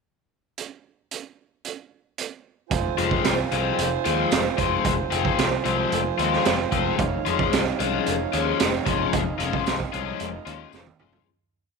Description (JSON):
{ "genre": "psychedelic rock", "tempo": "112 BPM", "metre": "4/4", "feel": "straight", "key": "F minor", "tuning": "A4 = 439 Hz", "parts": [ { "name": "raw garage drum kit", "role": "drums", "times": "0.6-11.3 s", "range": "hi-hat, kick drum, snare drum, toms", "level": "-26 LUFS", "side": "right 6 dB", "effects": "none" }, { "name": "hand-pumped harmonium", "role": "sustained chords", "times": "2.7-11.2 s", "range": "Eb4 to Ab5", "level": "-29 LUFS", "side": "right 10 dB", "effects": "none" }, { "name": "fuzz picked electric bass", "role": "bass", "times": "2.7-11.2 s", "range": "F1 to Eb2", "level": "-30 LUFS", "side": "equal", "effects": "overdrive" }, { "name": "crunchy overdriven guitar", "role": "riff", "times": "3.0-11.3 s", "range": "F3 to F4", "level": "-25 LUFS", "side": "left 14 dB", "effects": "flanger" }, { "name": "tambourine", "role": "percussion", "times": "3.3-10.9 s", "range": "none", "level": "-42 LUFS", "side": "left 14 dB", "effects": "none" } ], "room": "moderate echo chamber reverb, RT60 1.6 s", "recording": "1960s-style stereo with parts hard left and right", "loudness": "-21 LUFS", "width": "side -4 dB against mid", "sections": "0.6-2.7 pickup bar; 2.7-11.3 groove", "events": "fade-out 9.1-11.3; drum fill 10.7-11.3", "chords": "0.6 N.C.; 2.7 Fm; 7.0 Dbadd9/F" }